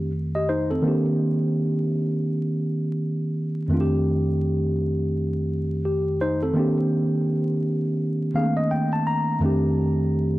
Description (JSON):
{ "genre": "hip hop", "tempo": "84 BPM", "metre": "4/4", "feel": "swing 60% on 16ths", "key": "C dorian", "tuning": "A4 = 440 Hz", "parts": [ { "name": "tine electric piano", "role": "solo", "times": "0.0-10.4 s", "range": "F2 to Bb5", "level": "-21 LUFS", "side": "equal", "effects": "none" } ], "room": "moderate plate reverb, RT60 3.4 s", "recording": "dark, warm production, vinyl crackle", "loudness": "-21 LUFS", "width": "side -17 dB against mid", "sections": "0.0-10.4 A section", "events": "tine electric piano fill 8.0-9.4", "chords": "0.0 F13; 0.9 Cm7; 3.7 F13; 6.6 Cm7; 9.4 F13" }